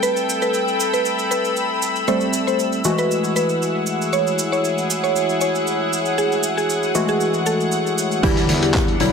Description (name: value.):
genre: deep house.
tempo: 117 BPM.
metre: 4/4.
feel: swing 54% on 16ths.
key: unclear.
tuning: A4 = 440 Hz.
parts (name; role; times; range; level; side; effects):
mallet-like synth pluck; melody; 0.0-9.0 s; G4 to C#5; -23 LUFS; right 2 dB; chorus, ping-pong delay.
deep dark ambient pad; sustained chords; 0.0-9.1 s; E4 to B5; -28 LUFS; left 1 dB; chorus, built-in reverb, sidechain pumping.
warm analog keys; stabs; 0.0-9.1 s; D3 to A4; -23 LUFS; left 2 dB; chorus, sidechain pumping, low-pass filter, ping-pong delay.
cabasa; percussion; 0.0-8.2 s; none; -28 LUFS; right 5 dB; none.
analog string pad; texture; 0.0-8.2 s; E6; -32 LUFS; left 1 dB; ensemble chorus, sidechain pumping.
warm studio string section; texture; 0.0-9.1 s; D4 to B5; -24 LUFS; left 1 dB; sidechain pumping.
fingered electric bass; bass; 8.2-9.1 s; E1 to E2; -24 LUFS; equal; sidechain pumping.
dusty soul sampler-style drum kit; drums; 8.2-9.1 s; crash cymbal, handclaps, hi-hat; -24 LUFS; left 1 dB; overdrive, low-pass filter on cymbals, low-pass filter on hats, low-pass filter on snare, low-pass filter on room.
electronic kick drum; drums; 8.2-8.9 s; none; -21 LUFS; equal; none.
swinging big-band drum kit; drums; 8.2-9.1 s; hi-hat, snare drum; -31 LUFS; right 2 dB; high-pass filter on hats, high-pass filter on snare, high-pass filter on room.
room: moderate echo chamber reverb, RT60 1.5 s, studio ambience.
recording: none.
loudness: -17 LUFS.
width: side -6 dB against mid.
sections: 0.0-8.2 A section.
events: filter sweep on synth keys 0.0-8.2.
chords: 0.0 Am9; 2.8 F#m9; 8.2 Em9.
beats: | 0.03 0.54 1.05 1.57 | 2.08 2.59 3.10 3.62 | 4.13 4.64 5.16 5.67 | 6.18 6.69 7.21 7.72 | 8.23 8.75.